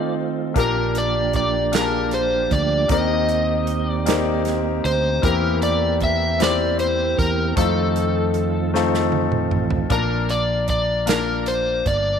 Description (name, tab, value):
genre	slow gospel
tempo	51 BPM (dotted quarters)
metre	6/8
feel	straight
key	Bb major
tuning	A4 = 440 Hz
part	overdriven slide guitar	melody	0.0-12.2 s	A4 to E5	-22 LUFS	equal	none
part	bright grand piano	accompaniment	0.0-12.2 s	Bb2 to A5	-24 LUFS	left 10 dB	none
part	mellow tonewheel organ	sustained chords	0.0-9.9 s	Eb3 to G4	-26 LUFS	right 10 dB	fast rotary speaker, chorus vibrato
part	fingered electric bass	bass	0.6-12.2 s	G1 to F2	-24 LUFS	right 1 dB	none
part	natural country drum kit	drums	0.6-12.0 s	hi-hat, kick drum, snare drum, toms	-25 LUFS	right 4 dB	none
room	moderate echo chamber reverb, RT60 2.1 s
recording	1960s-style stereo with parts hard left and right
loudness	-18 LUFS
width	side -7 dB against mid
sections	0.0-9.9 A section; 9.9-12.2 A section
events	drum fill 8.7-9.9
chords	0.0 F7; 0.6 Bb6; 2.9 Eb6; 5.2 C7/E; 7.6 F7; 9.9 Bbmaj7